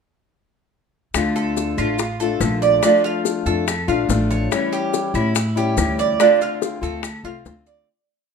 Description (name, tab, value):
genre	latin, Cuban son and guajira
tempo	142 BPM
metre	4/4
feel	straight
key	D minor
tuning	A4 = 440 Hz
part	fingerpicked steel-string acoustic guitar	accompaniment	1.1-7.9 s	D3 to F4	-22 LUFS	left 6 dB	none
part	upright bass	bass	1.1-7.8 s	A1 to A2	-23 LUFS	equal	none
part	bongos	percussion	1.1-7.9 s	none	-26 LUFS	left 9 dB	none
part	maracas	percussion	1.1-7.9 s	none	-31 LUFS	left 7 dB	none
part	claves	percussion	1.2-7.2 s	none	-30 LUFS	left 4 dB	none
part	Cuban tres	arpeggios	1.4-7.9 s	D4 to D5	-20 LUFS	right 6 dB	none
room	light reverb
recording	minimal, uncompressed stereo recording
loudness	-17 LUFS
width	side -6 dB against mid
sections	1.1-7.9 A section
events	fade-out 6.2-7.9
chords	1.1 Dm; 2.8 Bbmaj7 (rootless); 4.5 A7; 6.2 Dm7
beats	| 1.15 1.57 1.99 2.41 | 2.83 3.25 3.67 4.10 | 4.52 4.94 5.36 5.78 | 6.20 6.62 7.04 7.46